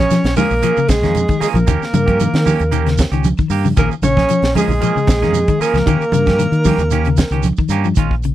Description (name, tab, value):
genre	afrobeat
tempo	114 BPM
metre	4/4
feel	straight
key	unclear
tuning	A4 = 439 Hz
part	breathy alto saxophone	melody	0.0-7.4 s	Ab4 to Db5	-19 LUFS	equal	none
part	clear trombone	second line	0.0-7.4 s	Ab3 to Db4	-22 LUFS	right 4 dB	none
part	clean electric guitar	stabs	0.0-8.1 s	F3 to Ab4	-23 LUFS	right 12 dB	none
part	fingered electric bass	bass	0.0-8.3 s	Bb1 to Eb3	-18 LUFS	equal	none
part	clean electric guitar	arpeggios	0.1-8.3 s	Db3 to Ab3	-20 LUFS	left 8 dB	slapback echo
part	tight funk drum kit	drums	0.1-8.3 s	hi-hat, kick drum, snare drum	-18 LUFS	equal	none
part	congas	percussion	0.1-7.6 s	none	-20 LUFS	right 4 dB	none
part	shekere	percussion	0.1-8.3 s	none	-28 LUFS	right 10 dB	none
room	little or no reverb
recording	dry, close 1970s-style studio recording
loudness	-13 LUFS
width	side -13 dB against mid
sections	0.0-8.0 A section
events	none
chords	0.0 Bbm7; 1.7 Eb7; 3.8 Bbm7; 5.9 Eb7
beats	0.10 0.62 1.15 | 1.67 2.19 2.72 3.24 | 3.77 4.29 4.82 5.34 | 5.87 6.39 6.92 7.44 | 7.97